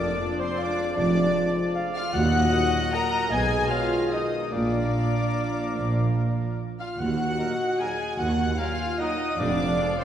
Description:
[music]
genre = classical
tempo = 137-165 BPM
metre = 3/4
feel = rubato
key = Eb minor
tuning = A4 = 440 Hz
[part]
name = rich studio violin section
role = melody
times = 0.0-10.0 s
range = C6 to Bb6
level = -35 LUFS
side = left 4 dB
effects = none
[part]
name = concert flute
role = second line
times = 0.0-10.0 s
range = C5 to Bb5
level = -34 LUFS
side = left 1 dB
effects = none
[part]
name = dark clarinet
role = second line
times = 0.0-10.0 s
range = Bb4 to Ab5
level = -34 LUFS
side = left 1 dB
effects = none
[part]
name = warm oboe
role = second line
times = 0.0-10.0 s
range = C5 to Bb5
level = -34 LUFS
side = left 1 dB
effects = none
[part]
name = warm studio violin section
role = second line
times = 0.0-10.0 s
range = C5 to Bb5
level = -32 LUFS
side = left 3 dB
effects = none
[part]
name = warm studio viola section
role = accompaniment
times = 0.0-10.0 s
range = C4 to Bb4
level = -31 LUFS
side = equal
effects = none
[part]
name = mellow French horn section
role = sustained chords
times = 0.0-9.9 s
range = Ab3 to Ab4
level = -34 LUFS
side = left 5 dB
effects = none
[part]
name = warm trombone section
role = sustained chords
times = 0.0-9.9 s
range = F2 to Gb3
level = -35 LUFS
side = equal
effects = none
[part]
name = bright trumpet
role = stabs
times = 0.0-9.9 s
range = Bb4 to Eb5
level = -36 LUFS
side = right 2 dB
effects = none
[part]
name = mellow tuba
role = bass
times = 0.0-9.7 s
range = F1 to Eb2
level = -33 LUFS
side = right 2 dB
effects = none
[part]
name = rich studio double bass section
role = bass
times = 0.0-9.7 s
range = F1 to Eb2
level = -30 LUFS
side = right 2 dB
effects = none
[part]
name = warm studio cello section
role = bass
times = 0.0-9.7 s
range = Eb2 to Cb3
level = -31 LUFS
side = right 2 dB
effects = none
[part]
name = timpani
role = percussion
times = 2.1-2.7 s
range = none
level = barely audible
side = none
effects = none
[sound]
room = wet scoring stage reverb, RT60 1.9 s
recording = heard from further back in the room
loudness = -22 LUFS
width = side -9 dB against mid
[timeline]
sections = 0.0-10.0 A section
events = none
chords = 0.0 Ddim/F; 2.1 Ebm; 3.3 Abm/Cb; 4.5 Bb; 7.0 Ebm; 9.4 Ddim/F

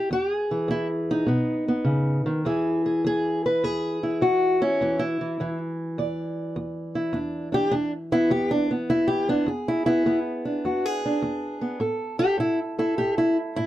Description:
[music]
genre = acoustic country blues, solo or duo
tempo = 103 BPM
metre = 4/4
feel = swing 67% on 8ths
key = E mixolydian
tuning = A4 = 440 Hz
[part]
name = fingerpicked steel-string acoustic guitar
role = solo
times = 0.0-13.7 s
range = E2 to D5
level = -22 LUFS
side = equal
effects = none
[sound]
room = light reverb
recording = close, detailed microphones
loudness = -22 LUFS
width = side -14 dB against mid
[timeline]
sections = 0.0-2.5 A section; 2.5-13.7 B section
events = steel-string acoustic guitar solo 2.5-13.7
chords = 0.0 E; 1.3 B; 2.5 E7; 11.8 A7(no3)

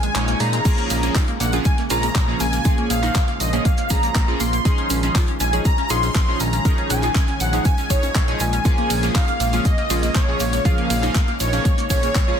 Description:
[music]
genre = progressive house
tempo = 120 BPM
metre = 4/4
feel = straight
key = unclear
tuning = A4 = 440 Hz
[part]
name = wide unison lead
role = melody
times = 0.0-12.4 s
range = Db5 to C6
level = -25 LUFS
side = equal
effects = wide subtle chorus, ping-pong delay
[part]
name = soft round pluck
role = second line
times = 0.0-12.4 s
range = Db5 to C6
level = -31 LUFS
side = equal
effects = analog chorus, sidechain pumping, ping-pong delay
[part]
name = lush unison pad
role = sustained chords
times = 0.0-12.4 s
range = Db3 to C5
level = -31 LUFS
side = left 1 dB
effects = chorus, sidechain pumping
[part]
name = glassy wavetable pluck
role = arpeggios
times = 0.0-12.3 s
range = Ab3 to Bb4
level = -29 LUFS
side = equal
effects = chorus, phaser, cassette tape, sidechain pumping, ping-pong delay
[part]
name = fat analog bass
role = bass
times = 0.0-12.3 s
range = Bb1 to Bb2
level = -24 LUFS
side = equal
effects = sidechain pumping
[part]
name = house drum kit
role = drums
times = 0.0-12.3 s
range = crash cymbal, handclaps, hi-hat, ride cymbal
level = -28 LUFS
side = right 1 dB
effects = soft clipping on snare
[part]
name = chorused polysynth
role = stabs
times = 0.2-12.4 s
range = F3 to Db5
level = -27 LUFS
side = right 2 dB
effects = sidechain pumping, ping-pong delay
[part]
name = soft brush drum kit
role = drums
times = 0.2-12.3 s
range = hi-hat, shaker, snare drum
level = -37 LUFS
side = left 1 dB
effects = none
[part]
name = electronic kick drum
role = drums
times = 0.7-12.3 s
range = none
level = -19 LUFS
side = equal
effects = none
[part]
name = egg shaker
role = percussion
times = 0.7-12.3 s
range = none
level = -34 LUFS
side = right 6 dB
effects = none
[sound]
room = little or no reverb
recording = dense, heavily limited modern master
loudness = -17 LUFS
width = side -8 dB against mid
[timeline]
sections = 0.0-12.4 A section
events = kick drops out 0.2-0.7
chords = 0.0 Dbadd9/Bb; 0.7 Bbm7; 4.7 Dbadd9/Bb

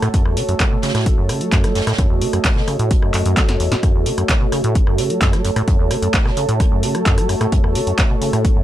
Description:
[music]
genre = acid house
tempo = 130 BPM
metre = 4/4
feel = straight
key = F# dorian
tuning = A4 = 442 Hz
[part]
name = warm analog pad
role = sustained chords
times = 0.0-8.6 s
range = A3 to A4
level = -26 LUFS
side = right 2 dB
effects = chorus, sidechain pumping
[part]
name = deep acid bass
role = riff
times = 0.0-8.6 s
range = F#1 to F#3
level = -20 LUFS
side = equal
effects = tube saturation, sidechain pumping
[part]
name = punchy analog drum machine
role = drums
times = 0.0-8.5 s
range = handclaps, hi-hat, rim click, snare drum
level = -23 LUFS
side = equal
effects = none
[part]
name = vintage brush drum kit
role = drums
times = 0.0-8.6 s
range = hi-hat, snare drum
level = -31 LUFS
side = right 2 dB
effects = high-pass filter on hats, high-pass filter on snare, high-pass filter on room
[part]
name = warbly tape-like pad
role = texture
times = 0.0-8.6 s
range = F#4 to A5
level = -24 LUFS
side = right 1 dB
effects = chorus, built-in reverb, phaser, sidechain pumping
[part]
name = electronic kick drum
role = drums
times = 0.1-8.5 s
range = none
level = -17 LUFS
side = equal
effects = none
[sound]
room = light reverb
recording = dark, warm production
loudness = -14 LUFS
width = side -13 dB against mid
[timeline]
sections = 0.0-8.6 A section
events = drum fill 3.4-3.8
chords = 0.0 F#m

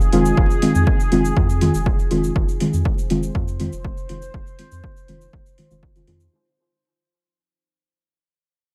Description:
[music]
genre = dub techno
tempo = 121 BPM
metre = 4/4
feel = straight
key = F minor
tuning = A4 = 440 Hz
[part]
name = deep dark ambient pad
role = sustained chords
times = 0.0-6.3 s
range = Eb4 to C5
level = -32 LUFS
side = equal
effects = chorus, built-in reverb, sidechain pumping
[part]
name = round analog bass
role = bass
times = 0.0-6.3 s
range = F1 to F2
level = -25 LUFS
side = equal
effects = sidechain pumping
[part]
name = electronic cabasa and hi-hat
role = drums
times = 0.0-6.3 s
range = none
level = -38 LUFS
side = equal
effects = overdrive
[part]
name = deep mellow chord stab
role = stabs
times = 0.1-6.2 s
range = Eb3 to F4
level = -23 LUFS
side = equal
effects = chorus, phaser, sidechain pumping, dub echo
[part]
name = electronic kick drum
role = drums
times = 0.4-5.9 s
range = none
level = -22 LUFS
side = equal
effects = overdrive
[sound]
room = light reverb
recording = vinyl crackle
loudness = -19 LUFS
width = mono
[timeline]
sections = 0.0-6.3 A section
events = fade-out 0.0-6.3; filter sweep on synth stab 0.0-6.3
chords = 0.0 Fm7

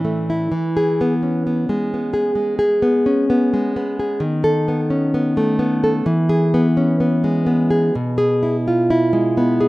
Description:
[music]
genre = romantic piece for solo classical guitar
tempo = 64 BPM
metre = 4/4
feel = rubato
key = unclear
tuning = A4 = 439 Hz
[part]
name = nylon-string guitar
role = solo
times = 0.0-9.7 s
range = A2 to A4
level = -16 LUFS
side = equal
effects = none
[sound]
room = light reverb, small room ambience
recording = rough home demo mix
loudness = -16 LUFS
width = side -19 dB against mid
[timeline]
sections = 0.0-9.7 A section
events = none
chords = 0.0 A5; 0.5 E; 4.2 B7/D#; 6.0 E; 7.9 E/B

